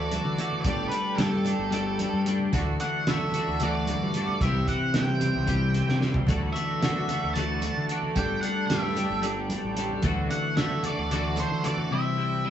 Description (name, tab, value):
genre	psychedelic rock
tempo	224 BPM (eighths)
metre	7/8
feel	straight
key	D mixolydian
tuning	A4 = 439 Hz
part	octave-fuzz lead guitar	melody	0.0-12.5 s	A4 to A5	-31 LUFS	right 1 dB	distortion
part	pedal harmonium	sustained chords	0.0-12.5 s	E4 to G5	-35 LUFS	right 6 dB	none
part	twelve-string electric guitar	riff	0.0-12.5 s	C3 to G4	-28 LUFS	left 2 dB	rotary speaker
part	fuzz picked electric bass	bass	0.0-11.9 s	G1 to D3	-30 LUFS	equal	overdrive
part	cloth-damped thuddy drum kit	drums	0.1-11.8 s	hi-hat, kick drum, snare drum, toms	-30 LUFS	right 1 dB	none
part	congas	percussion	0.1-11.9 s	none	-38 LUFS	right 3 dB	none
room	wet studio reverb, RT60 0.7 s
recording	band playing live in one room, nothing above 8.0 kHz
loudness	-24 LUFS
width	side -10 dB against mid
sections	0.0-12.5 A section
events	drum fill 5.8-6.3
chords	0.0 Dadd9; 0.7 Gsus2; 2.5 Dadd9; 4.4 C; 6.3 Dadd9; 8.2 Gsus2; 10.0 Dadd9; 11.9 C